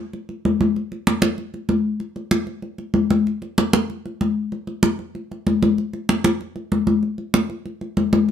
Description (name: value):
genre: jazz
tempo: 191 BPM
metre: 4/4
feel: straight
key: none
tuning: none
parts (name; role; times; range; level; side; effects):
- congas; percussion; 0.1-8.3 s; none; -19 LUFS; left 1 dB; none
room: moderate studio reverb, RT60 0.7 s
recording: close, detailed microphones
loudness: -19 LUFS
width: side -9 dB against mid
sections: 0.0-8.3 A section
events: none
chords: none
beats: 0.13 0.45 | 0.76 1.07 1.39 1.70 | 2.01 2.33 2.64 2.95 | 3.27 3.58 3.90 4.21 | 4.52 4.84 5.15 5.46 | 5.78 6.09 6.41 6.72 | 7.03 7.34 7.66 7.97 | 8.29